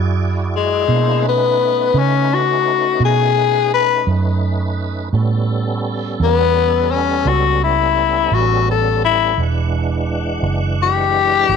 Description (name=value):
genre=slow blues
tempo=56 BPM (dotted quarters)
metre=12/8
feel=straight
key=unclear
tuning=A4 = 440 Hz
part: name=tonewheel organ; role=sustained chords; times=0.0-11.6 s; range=E3 to F#5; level=-24 LUFS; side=right 3 dB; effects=slow rotary speaker, overdrive, chorus vibrato
part: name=vintage muted fingered electric bass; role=bass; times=0.0-11.6 s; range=E1 to C#3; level=-19 LUFS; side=right 3 dB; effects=none
part: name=growling tenor saxophone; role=melody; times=0.6-11.6 s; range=G#3 to B4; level=-15 LUFS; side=left 9 dB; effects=none
room=light reverb, small room ambience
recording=none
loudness=-14 LUFS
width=side -6 dB against mid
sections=0.0-11.6 A section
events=tenor saxophone solo 0.0-11.6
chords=0.0 E9; 0.9 B9; 5.1 A9; 9.4 E9